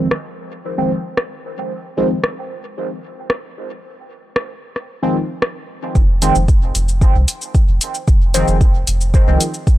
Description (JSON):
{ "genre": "dub techno", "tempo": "113 BPM", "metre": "4/4", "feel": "straight", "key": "F minor", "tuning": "A4 = 440 Hz", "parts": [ { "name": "resonant sweep polysynth", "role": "stabs", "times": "0.0-9.4 s", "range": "Eb3 to C4", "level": "-20 LUFS", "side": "equal", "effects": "chorus, phaser, sidechain pumping, dub echo" }, { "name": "punchy analog drum machine", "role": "drums", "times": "0.1-9.8 s", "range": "cabasa, hi-hat, rim click", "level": "-20 LUFS", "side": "equal", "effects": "low-pass filter on snare, low-pass filter on perc, low-pass filter on hats" }, { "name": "soft dub sub bass", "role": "bass", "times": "6.0-9.4 s", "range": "F1 to C2", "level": "-17 LUFS", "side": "equal", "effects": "sidechain pumping" }, { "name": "electronic kick drum", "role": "drums", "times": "6.0-9.8 s", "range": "none", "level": "-12 LUFS", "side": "equal", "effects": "none" } ], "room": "little or no reverb", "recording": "dry, gritty hardware recording", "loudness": "-14 LUFS", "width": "side -15 dB against mid", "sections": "0.0-6.0 A section; 6.0-9.8 B section", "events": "filter sweep on analog polysynth 0.0-6.0", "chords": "0.0 Fm7", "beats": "0.11 0.64 1.18 | 1.71 2.24 2.77 3.30 | 3.83 4.36 4.89 5.42 | 5.95 6.48 7.01 7.55 | 8.08 8.61 9.14 9.67" }